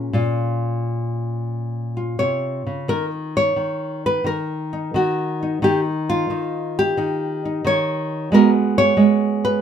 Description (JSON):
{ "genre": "solo jazz", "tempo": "88 BPM", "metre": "4/4", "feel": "swing 69% on 8ths, rubato", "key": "unclear", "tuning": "A4 = 440 Hz", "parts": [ { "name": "nylon-string guitar", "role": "solo", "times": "0.0-9.6 s", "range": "Bb2 to Db5", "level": "-18 LUFS", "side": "right 1 dB", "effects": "none" } ], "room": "light reverb", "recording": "minimal, uncompressed stereo recording", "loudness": "-18 LUFS", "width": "side -8 dB against mid", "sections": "0.0-2.9 A section; 2.9-9.6 B section", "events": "none", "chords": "0.0 Bbm9; 2.9 N.C.; 8.3 Abm7", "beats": "| 0.14 0.81 1.49 2.19 | 2.89 3.57 4.26 4.95 | 5.62 6.30 6.98 7.65 | 8.32 8.98" }